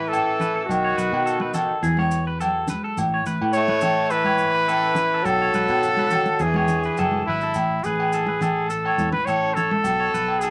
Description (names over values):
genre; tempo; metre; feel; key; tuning
highlife guitar band; 105 BPM; 4/4; straight; A major; A4 = 440 Hz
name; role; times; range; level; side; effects
breathy trumpet; melody; 0.0-10.5 s; E4 to C#5; -25 LUFS; equal; none
edgy tenor saxophone; second line; 0.0-7.3 s; D#3 to A3; -30 LUFS; equal; none
fingerpicked steel-string acoustic guitar; accompaniment; 0.0-10.5 s; A2 to G#4; -35 LUFS; equal; none
electric guitar at the edge of break-up; arpeggios; 0.0-10.5 s; G#4 to C#5; -31 LUFS; equal; none
agogo bells; percussion; 0.1-10.4 s; none; -29 LUFS; equal; none
maracas; percussion; 0.1-10.5 s; none; -45 LUFS; equal; none
congas; percussion; 0.4-9.8 s; none; -32 LUFS; equal; none
fingered electric bass; bass; 0.7-10.5 s; F#1 to B2; -31 LUFS; equal; none
room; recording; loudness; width
wet club ambience, RT60 0.5 s; vinyl crackle; -22 LUFS; mono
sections
0.0-7.6 A section; 7.6-10.5 B section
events
none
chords
0.0 A; 0.7 B7; 1.8 E; 3.0 A; 5.3 B7; 6.4 E7; 7.6 A; 9.8 B7(no3)